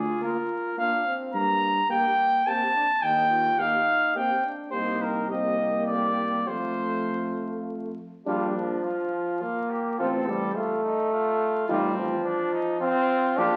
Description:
classical, brass quintet; 106 BPM; 3/4; rubato; A4 = 440 Hz
mellow trumpet; melody; 0.0-13.6 s; C4 to Bb5; -28 LUFS; equal
mellow trombone; accompaniment; 0.0-13.6 s; F3 to F4; -31 LUFS; equal
mellow tuba; bass; 0.0-13.6 s; A1 to G2; -36 LUFS; equal
mellow flugelhorn; second line; 0.2-13.6 s; F4 to G4; -37 LUFS; equal
mellow French horn; accompaniment; 0.2-13.6 s; A3 to Eb4; -36 LUFS; equal
wet large studio reverb, RT60 1.4 s; very old 78 rpm record, vinyl crackle; -26 LUFS; mono
0.0-8.3 A section; 8.3-13.6 B section
0.0 Bb/D; 1.3 Gm; 3.0 Eb; 4.7 Cm7; 6.5 F; 8.3 Bb; 10.0 F/A
0.21 0.77 | 1.33 1.90 2.46 | 3.02 3.59 4.15 | 4.73 5.30 5.88 | 6.47 7.07 7.67 | 8.27 8.85 9.42 | 9.99 10.56 11.13 | 11.69 12.25 12.81 | 13.37

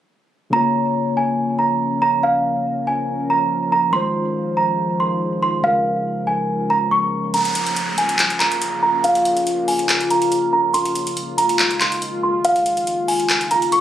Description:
hip hop, trap; 141 BPM; 4/4; half-time; Bb minor; A4 = 441 Hz
small celesta; melody; 0.5-13.8 s; F5 to Db6; -18 LUFS; right 2 dB; low-pass filter
muted felt-like synth keys; accompaniment; 0.5-7.4 s; Db3 to Db5; -23 LUFS; left 3 dB; chorus
deep dark ambient pad; sustained chords; 1.4-13.8 s; Db3 to Bb4; -25 LUFS; left 3 dB; chorus, built-in reverb
trap drum kit; drums; 7.3-13.8 s; handclaps, hi-hat; -21 LUFS; left 1 dB
downlifter; sound effects; 7.3-10.7 s; -28 LUFS; left 1 dB
little or no reverb; recorded on a phone in the room, studio ambience; -16 LUFS; side -11 dB against mid
0.5-7.3 A section; 7.3-13.8 B section
kick muted 7.3-13.8; filter sweep on celesta 7.3-13.8
0.5 Bbm; 3.9 Fm7; 5.6 Db6; 7.3 Bbm; 10.7 Fm7; 12.4 Db6
| 0.53 0.95 1.38 1.81 | 2.23 2.66 3.08 3.51 | 3.93 4.36 4.79 5.21 | 5.64 6.06 6.49 6.91 | 7.34 7.76 8.19 8.62 | 9.04 9.47 9.89 10.32 | 10.74 11.17 11.59 12.02 | 12.45 12.87 13.30 13.72

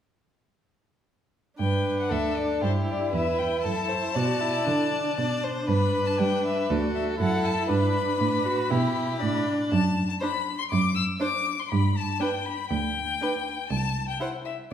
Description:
quick classical-period movement for string quartet; 119 BPM; 4/4; rubato; G major; A4 = 441 Hz
rich violin; melody; 1.6-14.7 s; C5 to E6; -30 LUFS; left 7 dB
rich violin; second line; 1.6-14.3 s; G4 to D5; -30 LUFS; equal
rich viola; accompaniment; 1.6-14.3 s; D4 to F#4; -30 LUFS; right 2 dB
warm cello; bass; 1.6-14.1 s; C2 to G3; -27 LUFS; right 2 dB
wet recital hall reverb, RT60 1.4 s; heard from further back in the room; -23 LUFS; side -9 dB against mid
1.6-14.7 A section
1.6 G; 2.6 Em7; 3.6 D7/F#; 5.7 G; 6.7 D; 7.7 G; 9.7 D/F#; 11.7 G; 13.7 C5
| 1.59 2.11 2.62 3.13 | 3.64 4.16 4.67 5.17 | 5.68 6.18 6.70 7.19 | 7.69 8.20 8.71 9.21 | 9.71 10.21 10.70 11.21 | 11.71 12.21 12.71 13.21 | 13.71 14.21 14.71

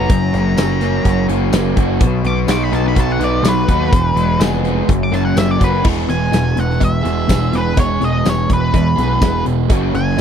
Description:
classic rock; 125 BPM; 4/4; straight; A4 = 440 Hz
octave-fuzz lead guitar; melody; 0.0-10.2 s; B4 to D6; -21 LUFS; left 1 dB; wah, distortion
overdriven semi-hollow guitar; riff; 0.0-10.2 s; E2 to G#4; -20 LUFS; left 12 dB
overdriven semi-hollow guitar; riff; 0.0-10.2 s; E2 to G#4; -20 LUFS; right 15 dB
growling picked electric bass; bass; 0.0-10.2 s; E1 to E2; -19 LUFS; equal; overdrive
huge arena drum kit; drums; 0.1-10.2 s; crash cymbal, hi-hat, kick drum, snare drum, tambourine; -17 LUFS; equal
cowbell; percussion; 5.8-10.2 s; -31 LUFS; right 15 dB
studio reverb; dry, close 1970s-style studio recording; -13 LUFS; side -8 dB against mid
0.0-5.8 A section; 5.8-10.2 B section
lead electric guitar solo 0.0-5.8
0.1 F#; 2.0 B; 3.9 E; 4.9 F#; 5.8 E; 9.7 F#
| 0.09 0.57 1.05 1.53 | 2.01 2.49 2.96 3.44 | 3.92 4.40 4.88 5.36 | 5.84 6.33 6.81 7.29 | 7.77 8.25 8.73 9.22 | 9.70 10.18

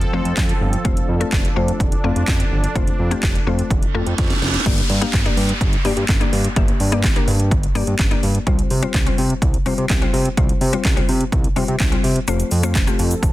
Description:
dance-pop; 126 BPM; 4/4; straight; G minor; A4 = 440 Hz
sweeping resonant pad; sustained chords; 0.0-4.6, 12.3-13.3 s; F3 to A4; -28 LUFS; right 1 dB; chorus, sidechain pumping
fat analog bass; bass; 0.0-13.3 s; F1 to C3; -20 LUFS; equal; sidechain pumping
house drum kit; drums; 0.0-13.3 s; crash cymbal, handclaps, hi-hat, kick drum, shaker, snare drum; -19 LUFS; equal; overdrive
mallet-like synth pluck; accompaniment; 0.1-13.3 s; G3 to F5; -25 LUFS; left 5 dB; chorus, sidechain pumping
reverse cymbal and downlifter; sound effects; 3.9-8.5 s; -27 LUFS; right 2 dB
digital ambience; dense, heavily limited modern master; -16 LUFS; side -16 dB against mid
0.0-4.7 A section; 4.7-13.3 B section
reverse cymbal 3.9-4.7; drum fill 4.2-4.7; kick muted 12.3-12.8
0.0 F; 4.7 Gm; 8.5 Csus4; 12.3 F
0.37 | 0.85 1.33 1.80 2.28 | 2.75 3.23 3.71 4.18 | 4.66 5.13 5.61 6.09 | 6.56 7.04 7.52 7.99 | 8.47 8.95 9.42 9.90 | 10.37 10.85 11.33 11.80 | 12.28 12.75 13.23

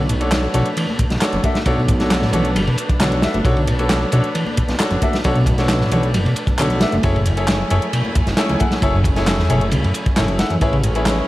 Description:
breakbeat, breaks; 134 BPM; 4/4; straight; B dorian; A4 = 441 Hz
rich symphonic string section; sustained chords; 0.0-11.3 s; F#3 to G#5; -27 LUFS; right 1 dB; vintage 12-bit sampler grit, sidechain pumping
mellow tonewheel organ; riff; 0.0-10.9 s; E2 to A3; -21 LUFS; equal; chorus vibrato, stopped rotary speaker
fat analog bass; bass; 0.0-11.2 s; F#1 to F#2; -21 LUFS; equal
crunchy breakbeat drum kit; drums; 0.1-11.2 s; kick drum, ride cymbal, snare drum; -20 LUFS; equal
garage drum kit; drums; 0.1-11.2 s; handclaps, hi-hat; -28 LUFS; equal; overdrive
bright grand piano; stabs; 0.2-11.3 s; D4 to F#5; -22 LUFS; left 1 dB; vintage 12-bit sampler grit, ping-pong delay
congas and bongos; percussion; 0.2-11.2 s; -28 LUFS; left 1 dB
small room ambience; vinyl crackle; -15 LUFS; side -16 dB against mid
0.0-11.3 A section
0.0 Bm7; 7.0 F#m7; 10.6 Amaj7
0.32 0.77 1.22 | 1.67 2.11 2.56 3.01 | 3.46 3.90 4.35 4.80 | 5.25 5.69 6.14 6.59 | 7.04 7.49 7.93 8.38 | 8.83 9.28 9.72 10.17 | 10.62 11.07

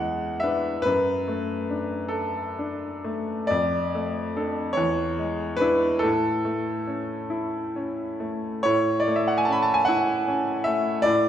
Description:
classical, romantic nocturne for solo piano; 41-52 BPM (dotted quarters); 12/8; rubato; A major; A4 = 443 Hz
clear grand piano; solo; 0.0-11.3 s; E2 to B5; -22 LUFS; equal
wet recital hall reverb, RT60 1.5 s; -23 LUFS; side -10 dB against mid
0.0-8.7 A section; 8.7-11.3 B section
0.0 E7; 0.9 D/F#; 3.5 Dm/F; 4.8 E7; 6.0 A
0.85 2.12 | 3.51 4.77 6.04 7.33 | 8.66 9.89 11.06

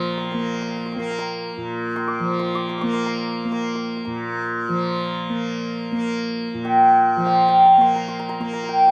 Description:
indian classical; free time; Bb raga bhupali; A4 = 440 Hz
santur; melody; 0.0-8.9 s; F5 to F6; -21 LUFS; equal; slapback echo
tanpura; drone; 0.0-8.9 s; Bb2 to Bb3; -26 LUFS; equal
light reverb; recorded outdoors, with no room sound; -21 LUFS; mono
0.0-8.9 A section
free time

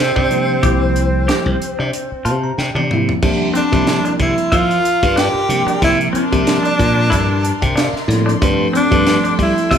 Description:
electric jazz fusion; 92 BPM; 4/4; swing 56% on 16ths; C mixolydian; A4 = 439 Hz
breathy tenor saxophone; melody; 0.0-9.8 s; C4 to G4; -18 LUFS; equal
silver concert flute; second line; 0.0-2.6 s; C5; -26 LUFS; left 2 dB
glassy slap bass; bass; 0.0-9.8 s; C2 to G3; -18 LUFS; left 1 dB
clean electric guitar; stabs; 0.2-9.8 s; C4 to E5; -23 LUFS; left 1 dB
tight funk drum kit; drums; 0.2-9.8 s; crash cymbal, hi-hat, kick drum, snare drum, toms; -20 LUFS; equal
bell-like tine electric piano; accompaniment; 0.3-9.8 s; F3 to Bb5; -21 LUFS; right 2 dB; fast stereo tremolo, phaser
clear studio string section; sustained chords; 3.2-9.8 s; A4 to C6; -27 LUFS; left 1 dB
moderate large studio reverb, RT60 1.2 s; band playing live in one room; -13 LUFS; side -8 dB against mid
0.0-3.2 A section; 3.2-9.8 B section
tine electric piano fill 1.9-3.2, 7.1-8.4; drum fill 2.6-3.2
0.0 C9sus4; 8.4 G9sus4
| 0.63 1.28 1.93 2.58 | 3.23 3.88 4.53 5.17 | 5.82 6.47 7.12 7.77 | 8.42 9.06 9.71

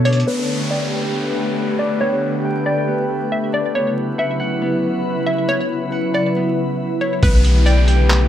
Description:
hip hop, atmospheric cloud-rap; 138 BPM; 4/4; half-time; A4 = 440 Hz
glassy FM pad; sustained chords; 0.0-8.3 s; C#3 to C#5; -20 LUFS; equal; ensemble chorus, built-in reverb, sidechain pumping, low-pass filter
Celtic harp; arpeggios; 0.0-8.3 s; B3 to A5; -28 LUFS; right 1 dB; low-pass filter, slapback echo
soft 808-style bass; bass; 0.0-0.2, 7.2-8.3 s; B1 to B2; -14 LUFS; equal
drifting glass-harmonics texture; texture; 0.0-7.2 s; B2 to C#6; -30 LUFS; equal; chorus, built-in reverb
hollow square pluck; melody; 0.1-8.1 s; B4 to E5; -22 LUFS; left 1 dB; chorus, low-pass filter, slapback echo, plate reverb
trip hop sampler-style drum kit; drums; 0.1-0.3, 7.2-8.2 s; handclaps, hi-hat, kick drum; -18 LUFS; equal
downlifter; sound effects; 0.3-3.7, 7.2-8.3 s; -29 LUFS; equal
moderate studio reverb, RT60 0.6 s; vinyl crackle; -16 LUFS; side -11 dB against mid
0.3-7.2 A section; 7.2-8.3 B section
filter sweep 0.3-7.2
0.3 A9sus4/B; 3.7 F#7sus4; 7.2 A9sus4/B
| 0.27 0.70 1.14 1.57 | 2.01 2.44 2.88 3.31 | 3.75 4.18 4.62 5.05 | 5.49 5.92 6.36 6.79 | 7.22 7.66 8.10

